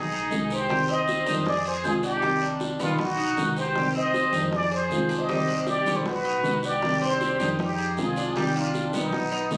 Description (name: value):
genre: latin, Cuban son and guajira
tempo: 157 BPM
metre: 4/4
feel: straight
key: C harmonic minor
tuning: A4 = 441 Hz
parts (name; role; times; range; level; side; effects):
- trumpet with plunger mute; melody; 0.0-9.6 s; Eb4 to Eb5; -29 LUFS; equal; none
- dark studio violin section; second line; 0.0-9.6 s; B3 to C5; -36 LUFS; equal; none
- Cuban tres; arpeggios; 0.0-9.6 s; G3 to Ab4; -35 LUFS; equal; none
- upright bass; bass; 0.0-9.6 s; B1 to F2; -37 LUFS; equal; none
- fingerpicked steel-string acoustic guitar; accompaniment; 0.3-9.6 s; C3 to G4; -31 LUFS; equal; none
- bongos; percussion; 0.3-9.6 s; none; -38 LUFS; equal; none
- guiro; percussion; 0.3-9.6 s; none; -40 LUFS; equal; none
room: moderate studio reverb, RT60 0.6 s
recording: recorded on a phone in the room, club reverb, compression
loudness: -25 LUFS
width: mono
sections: 0.0-9.6 A section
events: none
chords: 0.0 B6; 0.7 Cmadd9; 1.5 Fm7; 2.2 Cmadd9; 3.0 B6; 3.8 Cmadd9; 4.5 Fm7; 5.3 Cmadd9; 6.1 B6; 6.8 Cmadd9; 7.6 Fm7; 8.4 Cmadd9